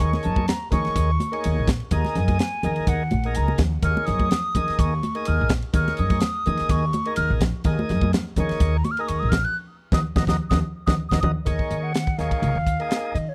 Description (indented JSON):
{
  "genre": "electric jazz fusion",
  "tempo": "126 BPM",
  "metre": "4/4",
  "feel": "swing 53% on 16ths",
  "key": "Eb minor",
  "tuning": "A4 = 440 Hz",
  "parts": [
    { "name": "hollow concert flute", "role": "melody", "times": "0.0-13.3 s", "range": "Db5 to Gb6", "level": "-30 LUFS", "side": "equal", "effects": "none" },
    { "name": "tonewheel organ", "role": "accompaniment", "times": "0.0-13.2 s", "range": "Bb3 to Eb5", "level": "-32 LUFS", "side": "equal", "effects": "slow rotary speaker" },
    { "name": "upright bass", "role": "bass", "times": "0.0-13.3 s", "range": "Bb1 to Eb3", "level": "-26 LUFS", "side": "equal", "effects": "none" },
    { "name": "crisp fusion drum kit", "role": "drums", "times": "0.0-13.3 s", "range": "hi-hat, kick drum, ride cymbal, snare drum", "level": "-27 LUFS", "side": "equal", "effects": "none" },
    { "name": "congas", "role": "percussion", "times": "0.1-11.4 s", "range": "none", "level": "-31 LUFS", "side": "equal", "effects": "none" }
  ],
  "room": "studio reverb",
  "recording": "dry, close 1970s-style studio recording",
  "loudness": "-23 LUFS",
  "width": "mono",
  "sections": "0.0-11.5 A section; 11.5-13.3 B section",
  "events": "flute solo 0.0-11.5; band accent 9.6-11.5; drum fill 11.0-11.5",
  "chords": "0.0 Ebm7; 11.5 Ebsus2",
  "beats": "| 0.01 0.49 0.97 1.45 | 1.92 2.40 2.88 3.36 | 3.83 4.31 4.79 5.27 | 5.75 6.22 6.70 7.18 | 7.66 8.13 8.61 9.09 | 9.56 10.04 10.52 11.00 | 11.47 11.95 12.43 12.91"
}